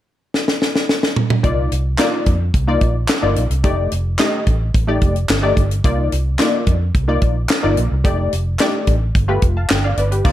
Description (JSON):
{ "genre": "early-eighties boogie funk", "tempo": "109 BPM", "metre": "4/4", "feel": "straight", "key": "C dorian", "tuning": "A4 = 440 Hz", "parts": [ { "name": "tight funk drum kit", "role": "drums", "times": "0.3-10.3 s", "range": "crash cymbal, handclaps, hi-hat, kick drum, snare drum, toms", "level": "-17 LUFS", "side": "equal", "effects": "gated reverb" }, { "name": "funky polysynth comp", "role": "accompaniment", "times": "1.4-10.3 s", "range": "A3 to A5", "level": "-20 LUFS", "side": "left 2 dB", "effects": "chorus" }, { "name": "vintage muted fingered electric bass", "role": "bass", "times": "1.4-10.3 s", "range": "F1 to F2", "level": "-18 LUFS", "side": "equal", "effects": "none" } ], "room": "small room ambience", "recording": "none", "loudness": "-15 LUFS", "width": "side -13 dB against mid", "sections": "0.0-1.4 A section; 1.4-10.2 B section", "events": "drum fill 0.3-1.4", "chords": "0.0 N.C.; 1.4 Cm11; 3.6 F13; 5.8 Cm11; 8.0 F13; 9.1 G9", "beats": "0.34 0.89 | 1.44 1.99 2.54 3.09 | 3.64 4.19 4.75 5.29 | 5.85 6.40 6.95 7.50 | 8.05 8.60 9.15 9.70 | 10.25" }